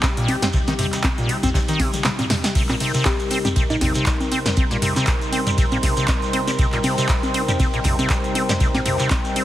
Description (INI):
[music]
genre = acid house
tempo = 119 BPM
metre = 4/4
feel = swing 56% on 16ths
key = C minor pentatonic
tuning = A4 = 442 Hz
[part]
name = warm analog pad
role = sustained chords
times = 0.0-9.4 s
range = C3 to Bb4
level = -28 LUFS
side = left 2 dB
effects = chorus, sidechain pumping
[part]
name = acid bass, square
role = riff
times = 0.0-9.4 s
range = Bb2 to C4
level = -24 LUFS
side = equal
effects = overdrive, wide subtle chorus, tape echo
[part]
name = electro analog drum machine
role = drums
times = 0.0-9.4 s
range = congas, crash cymbal, handclaps, hi-hat, snare drum, toms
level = -23 LUFS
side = equal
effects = none
[part]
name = electronic kick drum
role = drums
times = 0.0-9.2 s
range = none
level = -22 LUFS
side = equal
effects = none
[part]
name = loose indie drum kit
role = drums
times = 0.0-9.4 s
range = hi-hat, ride cymbal, snare drum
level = -35 LUFS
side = right 2 dB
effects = none
[part]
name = shekere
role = percussion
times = 0.0-9.3 s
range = none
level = -32 LUFS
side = right 2 dB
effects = none
[part]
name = warbly tape-like pad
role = texture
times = 3.3-9.4 s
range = C5 to C6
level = -29 LUFS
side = right 2 dB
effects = chorus, built-in reverb, sidechain pumping
[part]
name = thumb-piano-like synth pluck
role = melody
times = 3.1-4.2 s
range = Eb4 to G4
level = -28 LUFS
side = left 3 dB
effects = chorus, dub echo
[sound]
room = light reverb, studio reverb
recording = heavily compressed radio sound, multiband compression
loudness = -17 LUFS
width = side -13 dB against mid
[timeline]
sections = 0.0-2.6 A section; 2.6-9.4 A section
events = drop 0.0-2.6, 2.6-9.4; drum fill 1.8-2.6; kick drops out 2.0-2.6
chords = 0.0 Cm7